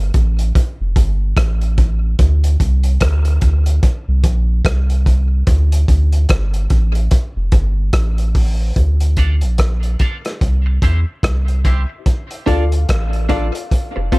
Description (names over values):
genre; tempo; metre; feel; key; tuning
dub reggae; 73 BPM; 4/4; swing 59% on 16ths; D minor; A4 = 440 Hz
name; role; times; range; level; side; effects
soft dub sub bass; bass; 0.0-14.2 s; F1 to E2; -14 LUFS; equal; none
crunchy breakbeat drum kit; drums; 0.1-14.2 s; hi-hat, kick drum, rim click; -16 LUFS; equal; none
electric guitar at the edge of break-up; accompaniment; 9.2-14.2 s; C4 to D5; -24 LUFS; right 3 dB; wide subtle chorus, high-pass filter, tape echo
clear upright piano; stabs; 9.2-14.2 s; E4 to F5; -26 LUFS; left 6 dB; high-pass filter, tape echo
room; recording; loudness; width
small room ambience; none; -13 LUFS; side -24 dB against mid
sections
0.0-8.8 A section; 8.8-14.2 B section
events
break 0.0-8.8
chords
0.0 N.C.; 2.2 Csus2; 3.8 Bbsus2; 5.5 D5; 7.1 N.C.; 8.8 Dm; 10.4 C; 12.1 Dm